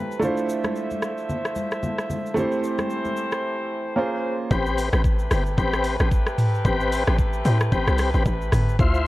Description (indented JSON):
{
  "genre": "amapiano",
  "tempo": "112 BPM",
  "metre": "4/4",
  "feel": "swing 58% on 16ths",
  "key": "A minor",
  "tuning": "A4 = 440 Hz",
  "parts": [
    { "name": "clear grand piano", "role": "accompaniment", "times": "0.0-4.5 s", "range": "A3 to C5", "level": "-26 LUFS", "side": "right 2 dB", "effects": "none" },
    { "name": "muted French horn section", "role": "sustained chords", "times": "0.0-9.1 s", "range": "C3 to E5", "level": "-30 LUFS", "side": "equal", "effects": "none" },
    { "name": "smooth R&B drum kit", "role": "drums", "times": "0.1-9.1 s", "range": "hi-hat, kick drum, rim click, shaker, toms", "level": "-24 LUFS", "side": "equal", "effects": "none" },
    { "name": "congas", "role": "percussion", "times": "0.2-3.2 s", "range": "none", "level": "-32 LUFS", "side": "left 2 dB", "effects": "none" },
    { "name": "tonewheel organ", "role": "stabs", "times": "4.5-9.1 s", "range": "C4 to C5", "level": "-26 LUFS", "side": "left 3 dB", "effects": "chorus vibrato, ping-pong delay" },
    { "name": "hollow log drum bass", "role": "bass", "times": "4.5-9.1 s", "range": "G1 to A2", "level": "-22 LUFS", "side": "equal", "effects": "none" }
  ],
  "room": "little or no reverb",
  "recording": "worn, warbling old tape, cassette tape, warbly pitch drift",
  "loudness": "-20 LUFS",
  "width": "side -17 dB against mid",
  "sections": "0.0-4.5 A section; 4.5-9.1 B section",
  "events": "drop 4.5-9.1",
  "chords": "0.2 Dm9; 2.4 C6; 4.0 Bbm9; 4.5 Am9",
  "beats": "| 0.22 0.76 1.29 1.83 | 2.37 2.90 3.44 3.97 | 4.51 5.04 5.58 6.12 | 6.65 7.19 7.72 8.26 | 8.79"
}